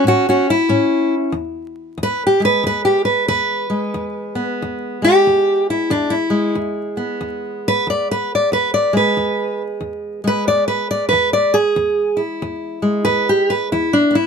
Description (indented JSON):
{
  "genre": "acoustic country blues, solo or duo",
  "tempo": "92 BPM",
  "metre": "4/4",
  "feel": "swing 60% on 8ths",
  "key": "E mixolydian",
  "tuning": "A4 = 438 Hz",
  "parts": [
    { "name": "fingerpicked steel-string acoustic guitar", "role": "solo", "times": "0.0-14.3 s", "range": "E2 to D5", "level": "-15 LUFS", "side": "equal", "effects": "none" }
  ],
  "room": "little or no reverb",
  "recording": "close, detailed microphones, vinyl crackle",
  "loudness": "-15 LUFS",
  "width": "side -6 dB against mid",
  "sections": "0.0-6.6 A section; 6.6-14.3 A section",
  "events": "steel-string acoustic guitar solo 0.0-6.6, 6.6-14.3",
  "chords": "0.0 A; 1.4 E",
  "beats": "0.05 0.70 | 1.35 2.00 2.65 3.31 | 3.96 4.61 5.26 5.91 | 6.56 7.21 7.86 8.52 | 9.17 9.82 10.47 11.12 | 11.77 12.42 13.07 13.72"
}